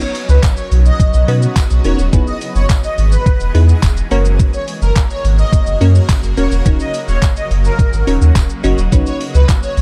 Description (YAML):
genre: dance-pop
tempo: 106 BPM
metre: 4/4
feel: straight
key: B major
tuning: A4 = 440 Hz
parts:
  - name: soft supersaw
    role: melody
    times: 0.0-9.7 s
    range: A#4 to D#5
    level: -25 LUFS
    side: equal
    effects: sidechain pumping
  - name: wavetable chord stab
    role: accompaniment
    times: 0.0-9.5 s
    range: A#3 to C#5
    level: -22 LUFS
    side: equal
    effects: sidechain pumping
  - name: shimmering ambient pad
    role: sustained chords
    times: 0.0-9.8 s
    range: C#3 to D#5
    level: -29 LUFS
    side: equal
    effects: chorus, built-in reverb, phaser, sidechain pumping
  - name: detuned 8-bit digital drum machine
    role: drums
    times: 0.0-9.8 s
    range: handclaps, hi-hat, kick drum, shaker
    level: -17 LUFS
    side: equal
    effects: none
  - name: saturated sub bass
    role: bass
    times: 0.3-9.8 s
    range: D#1 to B2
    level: -14 LUFS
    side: equal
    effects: sidechain pumping
  - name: tambourine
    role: percussion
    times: 0.4-9.6 s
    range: none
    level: -34 LUFS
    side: equal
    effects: none
room: little or no reverb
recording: dark, warm production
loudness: -13 LUFS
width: mono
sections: 0.0-9.8 A section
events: none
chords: 0.0 Badd9; 2.1 Emaj7; 4.1 F#; 6.7 D#m7; 8.9 Badd9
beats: 0.43 1.00 1.56 | 2.13 2.70 3.26 3.83 | 4.39 4.96 5.53 6.09 | 6.66 7.22 7.79 8.36 | 8.92 9.49